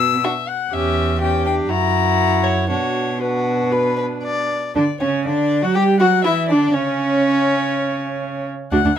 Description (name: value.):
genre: quick classical-period movement for string quartet.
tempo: 120 BPM.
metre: 4/4.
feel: rubato.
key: unclear.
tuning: A4 = 440 Hz.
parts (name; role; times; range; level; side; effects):
rich violin; melody; 0.0-9.0 s; B4 to E6; -22 LUFS; left 8 dB; none.
rich cello; bass; 0.0-8.9 s; D2 to G3; -22 LUFS; right 3 dB; none.
warm violin; second line; 0.2-8.9 s; C#4 to D5; -20 LUFS; left 1 dB; none.
warm viola; accompaniment; 0.2-9.0 s; C#4 to G4; -24 LUFS; right 4 dB; none.
room: light reverb.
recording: close, detailed microphones.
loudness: -16 LUFS.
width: side -9 dB against mid.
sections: 0.0-4.8 A section; 4.8-9.0 B section.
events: none.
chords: 0.0 Bm; 0.7 C#dim/E; 1.7 F#7; 2.7 Bm; 4.8 Em13/C#; 6.8 N.C..